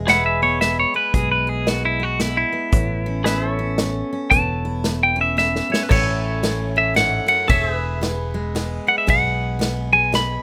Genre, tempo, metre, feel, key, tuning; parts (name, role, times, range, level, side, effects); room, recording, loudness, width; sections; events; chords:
honky-tonk and classic country; 113 BPM; 3/4; swing 60% on 8ths; E major; A4 = 440 Hz
dark upright piano; accompaniment; 0.0-5.9 s; G#4 to E5; -43 LUFS; equal
picked steel-string acoustic guitar; accompaniment; 0.0-10.4 s; E2 to G#4; -30 LUFS; equal
fingered electric bass; bass; 0.0-10.4 s; E1 to B1; -27 LUFS; equal
clean electric guitar; melody; 0.1-10.4 s; E4 to B5; -21 LUFS; equal
pedal steel guitar; sustained chords; 0.1-10.4 s; G#4 to E5; -31 LUFS; equal
unplugged drum kit; drums; 0.1-10.3 s; crash cymbal, hi-hat, kick drum, ride cymbal, snare drum; -24 LUFS; equal
light reverb; rough home demo mix; -19 LUFS; mono
0.0-5.9 A section; 5.9-10.4 B section
clean electric guitar solo 0.0-5.9; drum fill 5.4-5.9
0.0 E; 2.7 Aadd9; 5.9 A; 7.5 E